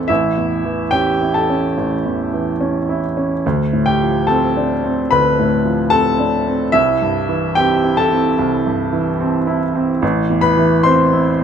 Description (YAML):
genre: neoclassical minimalist piano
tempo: 73 BPM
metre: 4/4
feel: rubato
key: A minor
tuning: A4 = 437 Hz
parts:
  - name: clear upright piano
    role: solo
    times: 0.0-11.4 s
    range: A1 to C6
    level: -14 LUFS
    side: equal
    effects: none
room: moderate large studio reverb, RT60 0.9 s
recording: band playing live in one room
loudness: -14 LUFS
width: side -8 dB against mid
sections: 0.0-11.4 A section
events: none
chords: 0.1 A; 3.4 Dm7; 6.7 C; 10.0 Am